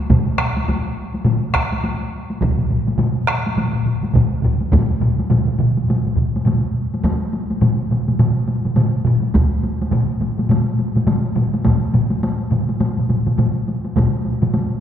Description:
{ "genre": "japanese traditional, taiko drum ensemble", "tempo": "104 BPM", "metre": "4/4", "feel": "swing 60% on 16ths", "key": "none", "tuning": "none", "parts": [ { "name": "solo taiko drums", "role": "percussion", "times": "0.1-14.7 s", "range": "none", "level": "-22 LUFS", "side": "left 1 dB", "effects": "none" }, { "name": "solo taiko drums", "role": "percussion", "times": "0.1-14.5 s", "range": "none", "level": "-20 LUFS", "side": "left 3 dB", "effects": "none" }, { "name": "solo taiko drums", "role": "percussion", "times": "0.1-14.5 s", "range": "none", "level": "-21 LUFS", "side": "right 4 dB", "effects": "none" }, { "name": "taiko ensemble", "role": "percussion", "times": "0.1-14.1 s", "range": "none", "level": "-22 LUFS", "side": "right 1 dB", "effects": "none" } ], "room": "wet concert hall reverb, RT60 2.5 s", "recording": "recorded in a church or concert hall", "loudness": "-16 LUFS", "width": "side -9 dB against mid", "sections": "0.0-7.0 A section; 7.0-14.8 B section", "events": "none", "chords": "none" }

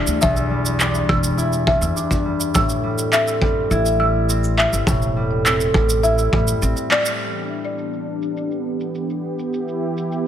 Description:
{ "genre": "folktronica", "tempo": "103 BPM", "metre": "4/4", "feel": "straight", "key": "E minor", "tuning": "A4 = 443 Hz", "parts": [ { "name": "concert harp", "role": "arpeggios", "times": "0.0-10.3 s", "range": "E2 to E4", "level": "-22 LUFS", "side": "equal", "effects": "digital delay" }, { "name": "upright bass", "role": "bass", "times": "0.1-6.7 s", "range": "E1 to E2", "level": "-21 LUFS", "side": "equal", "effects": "none" }, { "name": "electronic shaker and handclaps", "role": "drums", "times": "0.1-10.2 s", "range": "none", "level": "-22 LUFS", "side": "right 1 dB", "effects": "low-pass filter on perc, low-pass filter on snare" }, { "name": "folk marimba with medium mallets", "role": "second line", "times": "0.2-7.2 s", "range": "D5 to E6", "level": "-24 LUFS", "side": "left 1 dB", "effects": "digital delay" }, { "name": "kick drum", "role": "drums", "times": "0.2-6.4 s", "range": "none", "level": "-22 LUFS", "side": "equal", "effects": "none" }, { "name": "warm analog pad", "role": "sustained chords", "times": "7.2-10.3 s", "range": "E3 to G4", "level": "-24 LUFS", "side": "equal", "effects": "chorus" } ], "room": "light reverb, small room ambience", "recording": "none", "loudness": "-17 LUFS", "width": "side -10 dB against mid", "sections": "0.0-7.2 A section; 7.2-10.3 B section", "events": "kick drops out 6.6-7.2; band accent 6.9", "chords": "0.0 Em7; 2.5 Am7; 7.2 Em7" }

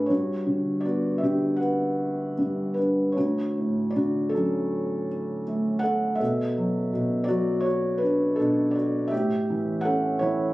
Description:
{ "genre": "classical, lyrical solo piano", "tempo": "80 BPM", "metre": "4/4", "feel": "uneven beats, rubato", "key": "D major", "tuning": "A4 = 436 Hz", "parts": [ { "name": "felt-muted upright piano", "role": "solo", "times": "0.0-10.5 s", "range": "D2 to F#5", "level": "-23 LUFS", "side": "equal", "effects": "none" } ], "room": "light reverb", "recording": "recorded on a phone in the room, club reverb, compression", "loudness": "-23 LUFS", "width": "side -18 dB against mid", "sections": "0.0-10.5 A section", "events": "none", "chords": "0.1 Gmaj7; 3.2 Dmaj7; 6.2 Bm7; 9.1 A7" }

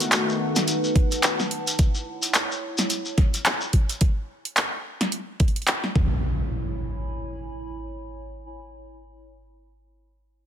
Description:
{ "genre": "glitch hop", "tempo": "108 BPM", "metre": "4/4", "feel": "swing 59% on 16ths", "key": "C# minor", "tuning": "A4 = 440 Hz", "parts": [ { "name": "warm analog pad", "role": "sustained chords", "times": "0.0-1.8 s", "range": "D#3 to F#4", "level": "-28 LUFS", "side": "left 2 dB", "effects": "chorus, sidechain pumping" }, { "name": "dubstep drum kit", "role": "drums", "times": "0.0-5.9 s", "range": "handclaps, hi-hat, snare drum", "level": "-24 LUFS", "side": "equal", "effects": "overdrive" }, { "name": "shekere", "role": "percussion", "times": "0.0-4.0 s", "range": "none", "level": "-29 LUFS", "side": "left 2 dB", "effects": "none" }, { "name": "warbly tape-like pad", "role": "texture", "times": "0.0-9.2 s", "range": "D#4 to B5", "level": "-32 LUFS", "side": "equal", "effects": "chorus, built-in reverb, sidechain pumping" }, { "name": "electronic kick drum", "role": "drums", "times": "1.0-6.1 s", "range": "none", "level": "-20 LUFS", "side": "equal", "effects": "overdrive" }, { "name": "impact", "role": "sound effects", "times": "6.0-10.0 s", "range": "none", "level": "-29 LUFS", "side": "equal", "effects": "none" } ], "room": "light reverb", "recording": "none", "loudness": "-21 LUFS", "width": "side -9 dB against mid", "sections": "0.0-6.2 A section; 6.2-8.5 B section", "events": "fade-out on ambient pad 0.0-4.0", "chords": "0.0 B7; 1.8 F#m7; 4.0 N.C.; 6.0 C#m; 6.2 C#m7" }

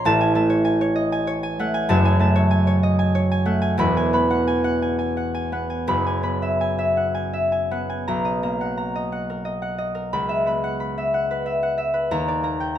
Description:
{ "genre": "classical, solo harp piece", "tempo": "54-67 BPM (dotted quarters)", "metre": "6/8", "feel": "rubato", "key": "B mixolydian", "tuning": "A4 = 440 Hz", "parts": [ { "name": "concert harp", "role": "solo", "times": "0.0-12.8 s", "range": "E1 to B5", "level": "-19 LUFS", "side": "equal", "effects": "none" } ], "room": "moderate stone room reverb, RT60 1.1 s", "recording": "none", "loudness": "-19 LUFS", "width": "side -10 dB against mid", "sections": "0.0-8.1 A section; 8.1-12.8 B section", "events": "none", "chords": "0.1 Amaj7; 1.9 F#madd9; 3.8 Eadd9; 5.9 F#9sus4; 8.1 Bmaj7; 10.1 C#m11; 12.1 D#maj7" }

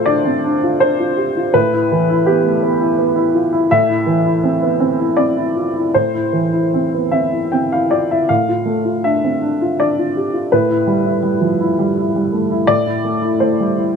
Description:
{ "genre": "neoclassical minimalist piano", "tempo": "76-85 BPM", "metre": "3/4", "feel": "rubato", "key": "A minor", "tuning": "A4 = 443 Hz", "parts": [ { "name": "warm upright piano", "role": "solo", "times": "0.0-14.0 s", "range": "A2 to G5", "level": "-14 LUFS", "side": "equal", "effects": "none" } ], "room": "light reverb", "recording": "lossy compression artefacts", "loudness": "-14 LUFS", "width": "side -6 dB against mid", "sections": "0.0-14.0 A section", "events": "none", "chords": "0.0 Dm/A; 1.5 Em/A; 3.7 Am; 8.3 Dm/A; 10.5 Em/A; 12.7 Am" }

